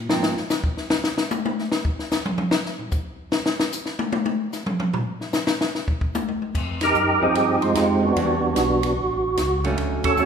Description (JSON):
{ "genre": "soul jazz organ trio", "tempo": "149 BPM", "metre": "4/4", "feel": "swing 66% on 8ths", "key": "unclear", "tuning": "A4 = 440 Hz", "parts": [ { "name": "tonewheel organ", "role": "bass", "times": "0.0-0.4, 6.5-10.3 s", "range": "A1 to Ab2", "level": "-28 LUFS", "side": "equal", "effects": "slow rotary speaker" }, { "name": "vintage hollow-body jazz guitar", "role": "accompaniment", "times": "0.1-0.3, 7.2-10.3 s", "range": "D3 to G4", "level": "-27 LUFS", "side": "right 4 dB", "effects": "none" }, { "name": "compact cocktail drum kit", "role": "drums", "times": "0.1-10.3 s", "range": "crash cymbal, hi-hat, kick drum, ride cymbal, snare drum, toms", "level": "-23 LUFS", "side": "left 2 dB", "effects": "none" }, { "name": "percussive tonewheel organ", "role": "melody", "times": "6.8-10.3 s", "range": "Ab3 to Bb4", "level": "-19 LUFS", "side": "right 2 dB", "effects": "slow rotary speaker, overdrive, chorus vibrato" } ], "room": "wet recital hall reverb, RT60 1.7 s", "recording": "recorded in a church or concert hall", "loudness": "-20 LUFS", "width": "side -7 dB against mid", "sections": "0.0-6.5 A section; 6.5-10.3 B section", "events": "drum solo 0.1-6.5; band accent 6.7, 10.0", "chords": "0.1 Ab69; 1.7 N.C.; 6.5 Fm9; 8.2 Em9; 9.0 A" }